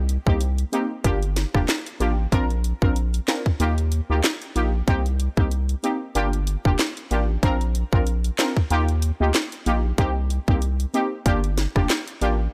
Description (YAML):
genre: dancehall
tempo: 94 BPM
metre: 4/4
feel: swing 56% on 16ths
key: unclear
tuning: A4 = 443 Hz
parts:
  - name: round analog bass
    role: bass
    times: 0.0-12.5 s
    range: F1 to Eb2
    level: -25 LUFS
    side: equal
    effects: none
  - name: island pop drum kit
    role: drums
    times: 0.1-12.4 s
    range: handclaps, hi-hat, kick drum, rim click, snare drum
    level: -25 LUFS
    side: equal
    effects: none
  - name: synth brass stab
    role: accompaniment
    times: 0.3-12.4 s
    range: Bb3 to Bb4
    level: -28 LUFS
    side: equal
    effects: chorus
room: digital ambience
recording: none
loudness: -23 LUFS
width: mono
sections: 0.0-12.5 A section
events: none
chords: 0.0 Cm7; 1.0 Gm7; 2.3 Bbadd9; 3.6 Ebadd9; 4.9 Cm7; 6.2 Gm7; 7.4 Bbadd9; 8.7 Ebadd9; 10.0 Cm7; 11.3 Gm7